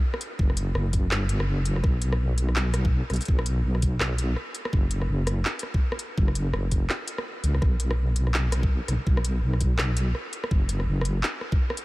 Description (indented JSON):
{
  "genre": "half-time drum and bass",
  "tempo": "166 BPM",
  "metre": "4/4",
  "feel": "swing 60% on 16ths, half-time",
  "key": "unclear",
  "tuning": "A4 = 440 Hz",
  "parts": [
    { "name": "organic electronic drum kit", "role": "drums", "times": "0.1-11.8 s", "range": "handclaps, hi-hat, rim click", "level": "-31 LUFS", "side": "equal", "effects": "small room ambience" },
    { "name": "deep soft wobble bass", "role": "bass", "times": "0.4-11.2 s", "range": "F#1 to C#2", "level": "-24 LUFS", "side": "equal", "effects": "chorus" },
    { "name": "electronic kick drum", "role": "drums", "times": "0.4-11.6 s", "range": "none", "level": "-23 LUFS", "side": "equal", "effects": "overdrive, small room ambience" }
  ],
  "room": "little or no reverb",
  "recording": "none",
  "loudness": "-23 LUFS",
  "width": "side -20 dB against mid",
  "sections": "0.0-11.8 A section",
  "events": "none",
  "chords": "none",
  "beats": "0.03 | 0.39 0.75 1.11 1.47 | 1.83 2.20 2.56 2.92 | 3.28 3.64 4.00 4.37 | 4.73 5.09 5.45 5.81 | 6.17 6.53 6.89 7.26 | 7.62 7.98 8.34 8.70 | 9.06 9.43 9.79 10.15 | 10.51 10.87 11.23 11.59"
}